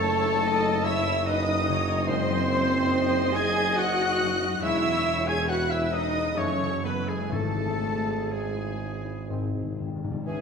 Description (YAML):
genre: classical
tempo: 60-73 BPM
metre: 3/4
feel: rubato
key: C# minor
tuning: A4 = 440 Hz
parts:
  - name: muted symphonic violin section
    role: melody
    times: 0.0-10.4 s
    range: G#5 to G#6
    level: -32 LUFS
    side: left 2 dB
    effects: none
  - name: bright oboe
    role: second line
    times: 0.0-10.4 s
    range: G#4 to G#5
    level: -35 LUFS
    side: right 2 dB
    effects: none
  - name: muted symphonic violin section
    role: second line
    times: 0.0-10.4 s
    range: G#4 to G#5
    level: -35 LUFS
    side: left 2 dB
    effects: none
  - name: silver concert flute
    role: second line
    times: 0.0-10.4 s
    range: G#4 to G#5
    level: -33 LUFS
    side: left 2 dB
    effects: none
  - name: warm clarinet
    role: second line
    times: 0.0-10.4 s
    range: C#4 to G#5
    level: -34 LUFS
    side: equal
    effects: none
  - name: muted symphonic viola section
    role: accompaniment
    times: 0.0-10.4 s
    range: C#4 to D#5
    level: -34 LUFS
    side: right 1 dB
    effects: none
  - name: mellow French horn section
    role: sustained chords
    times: 0.0-10.4 s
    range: G#3 to G#4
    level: -32 LUFS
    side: left 2 dB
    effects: none
  - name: concert harp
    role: arpeggios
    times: 0.0-10.4 s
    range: E2 to C#5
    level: -33 LUFS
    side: left 8 dB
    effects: none
  - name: muted chamber cello section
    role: bass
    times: 0.0-10.4 s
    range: C#3 to G#4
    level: -34 LUFS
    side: right 3 dB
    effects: none
  - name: muted symphonic double bass section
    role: bass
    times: 0.0-10.4 s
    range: G#1 to F#2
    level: -34 LUFS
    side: right 5 dB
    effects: none
  - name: warm tuba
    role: bass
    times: 0.0-10.1 s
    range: E1 to G#1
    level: -33 LUFS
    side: right 4 dB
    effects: none
  - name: warm trombone section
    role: sustained chords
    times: 2.1-10.4 s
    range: C#3 to C#4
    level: -38 LUFS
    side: right 4 dB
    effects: none
  - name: timpani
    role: percussion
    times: 7.3-10.2 s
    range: G#2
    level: -36 LUFS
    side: left 2 dB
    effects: none
  - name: mellow bassoon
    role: accompaniment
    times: 10.3-10.4 s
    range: E3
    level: -34 LUFS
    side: right 1 dB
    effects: none
room: wet scoring stage reverb, RT60 1.8 s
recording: none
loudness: -23 LUFS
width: side -6 dB against mid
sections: 0.0-10.3 A section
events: timpani fill 9.3-10.3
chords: 0.0 D#m7b5/F#; 2.1 G#7/F#; 4.6 C#m/E; 6.4 F#m; 7.3 C#m/G#; 9.3 G#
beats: 0.44 1.27 | 2.09 2.92 3.78 | 4.64 5.49 6.37 | 7.32 8.31 9.30 | 10.27